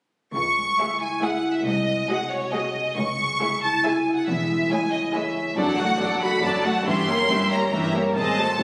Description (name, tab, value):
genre	classical, dramatic, fast romantic movement for symphony orchestra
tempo	138 BPM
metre	3/4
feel	rubato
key	C# minor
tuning	A4 = 441 Hz
part	warm studio violin section	melody	0.3-8.6 s	C#5 to C#6	-27 LUFS	equal	none
part	concert harp	arpeggios	0.3-8.6 s	E2 to F#5	-30 LUFS	equal	none
part	clear symphonic double bass section	bass	0.3-8.6 s	E1 to C#2	-35 LUFS	equal	none
part	rich symphonic cello section	bass	0.3-8.6 s	B#1 to G#2	-34 LUFS	equal	none
part	warm symphonic violin section	second line	0.8-8.6 s	F#4 to F#5	-30 LUFS	equal	none
part	rich symphonic viola section	accompaniment	0.8-8.6 s	E3 to F#4	-30 LUFS	equal	none
room	wet scoring stage reverb, RT60 1.5 s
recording	recorded on a phone in the room, studio reverb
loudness	-23 LUFS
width	mono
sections	0.3-8.6 A section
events	none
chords	0.3 C#m; 1.7 G#7/B#; 3.0 C#m; 4.3 C#m/E; 5.6 D/F#; 6.9 Gdim7; 8.2 G#7b9